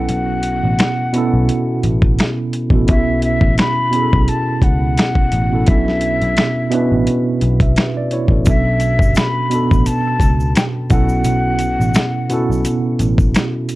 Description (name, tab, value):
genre	lo-fi hip hop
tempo	86 BPM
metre	4/4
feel	swing 56% on 16ths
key	unclear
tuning	A4 = 440 Hz
part	breathy jazz flute	melody	0.0-13.0 s	E5 to B5	-21 LUFS	left 2 dB	low-pass filter, plate reverb
part	tine electric piano	accompaniment	0.0-13.8 s	B2 to E5	-18 LUFS	right 2 dB	overdrive, medium stereo tremolo, cassette tape, low-pass filter, plate reverb
part	vintage muted picked electric bass	bass	0.0-13.3 s	G1 to C#2	-18 LUFS	equal	none
part	dusty soul sampler-style drum kit	drums	0.1-13.8 s	finger snaps, hi-hat, kick drum, snare drum	-15 LUFS	equal	overdrive
part	tube shaker	percussion	8.5-13.8 s	none	-39 LUFS	left 4 dB	none
room	light reverb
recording	dark, warm production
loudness	-13 LUFS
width	side -18 dB against mid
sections	0.0-13.8 A section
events	none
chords	0.0 A69; 2.9 F#m7; 5.7 Bm11; 8.5 E7sus4; 10.9 A69